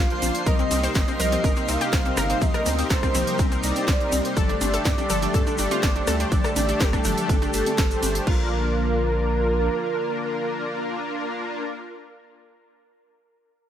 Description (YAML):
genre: progressive house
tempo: 123 BPM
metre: 4/4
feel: straight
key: Bb major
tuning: A4 = 440 Hz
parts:
  - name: warm velvety synth lead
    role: melody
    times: 0.0-11.6 s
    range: F4 to F5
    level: -28 LUFS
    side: right 2 dB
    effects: chorus, tremolo, sidechain pumping, dub echo
  - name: warm analog pad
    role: sustained chords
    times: 0.0-11.6 s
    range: C3 to G4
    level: -32 LUFS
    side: equal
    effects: chorus, sidechain pumping
  - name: saturated sub bass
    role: bass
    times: 0.0-9.7 s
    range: G1 to G2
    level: -28 LUFS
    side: equal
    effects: sidechain pumping
  - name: twinkling granular texture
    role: texture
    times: 0.0-8.3 s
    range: C6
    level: -38 LUFS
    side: right 1 dB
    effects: built-in reverb, sidechain pumping
  - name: soft supersaw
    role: stabs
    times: 0.1-11.6 s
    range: A3 to C5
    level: -28 LUFS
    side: left 1 dB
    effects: ensemble chorus, sidechain pumping, tape echo
  - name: house drum kit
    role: drums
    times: 0.1-8.4 s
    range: crash cymbal, hi-hat, ride cymbal, snare drum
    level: -30 LUFS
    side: right 1 dB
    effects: small room reverb
  - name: electronic congas and rim click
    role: percussion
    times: 0.2-8.1 s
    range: none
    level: -30 LUFS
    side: left 4 dB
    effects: sidechain pumping on perc, small room reverb, sidechain pumping on snare
  - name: tube shaker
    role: percussion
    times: 0.2-8.2 s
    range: none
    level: -35 LUFS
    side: left 2 dB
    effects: none
  - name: analog pluck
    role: arpeggios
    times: 0.5-11.6 s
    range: C4 to C5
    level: -31 LUFS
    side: left 1 dB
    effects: chorus, sidechain pumping, tape echo
  - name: electronic kick drum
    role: drums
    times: 0.5-8.4 s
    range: none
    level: -23 LUFS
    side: equal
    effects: small room reverb
room: light reverb, digital ambience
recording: none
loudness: -20 LUFS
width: side -10 dB against mid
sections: 0.0-8.3 A section; 8.3-12.2 B section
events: drop 0.0-8.3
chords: 0.5 Cm7; 4.4 Gsus2; 8.3 Bb